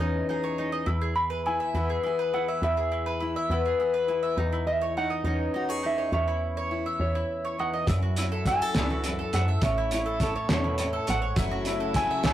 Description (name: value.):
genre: indie folk with a building arrangement.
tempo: 68 BPM (dotted quarters).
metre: 6/8.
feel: straight.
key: unclear.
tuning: A4 = 440 Hz.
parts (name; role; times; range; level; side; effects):
semi-hollow electric guitar; melody; 0.0-12.3 s; C#5 to B5; -29 LUFS; right 2 dB; harmonic tremolo.
fingerpicked steel-string acoustic guitar; accompaniment; 0.0-11.4 s; E2 to A4; -30 LUFS; left 3 dB; none.
mandolin; arpeggios; 0.0-12.3 s; C#4 to E5; -32 LUFS; right 2 dB; none.
woody FM bass; bass; 0.0-12.3 s; F#1 to F#2; -30 LUFS; equal; none.
cloth-damped thuddy drum kit; drums; 7.9-12.3 s; hi-hat, kick drum, snare drum; -28 LUFS; equal; none.
picked twelve-string acoustic guitar; accompaniment; 11.4-12.3 s; F#3 to E4; -31 LUFS; left 4 dB; none.
warm studio string section; sustained chords; 11.4-12.3 s; C#3 to F#4; -38 LUFS; equal; none.
room: moderate small room reverb, RT60 0.6 s.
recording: rough rehearsal-room recording, warm saturation.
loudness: -24 LUFS.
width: side -12 dB against mid.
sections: 0.0-7.9 A section; 7.9-12.3 B section.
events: none.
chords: 0.0 C#madd9/E; 0.9 E; 4.4 C#madd9/E; 7.9 F#m7; 9.6 A; 11.4 F#m7.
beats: | 0.87 1.74 | 2.62 3.50 | 4.38 5.25 | 6.13 7.00 | 7.88 8.75 | 9.62 10.50 | 11.37 12.24.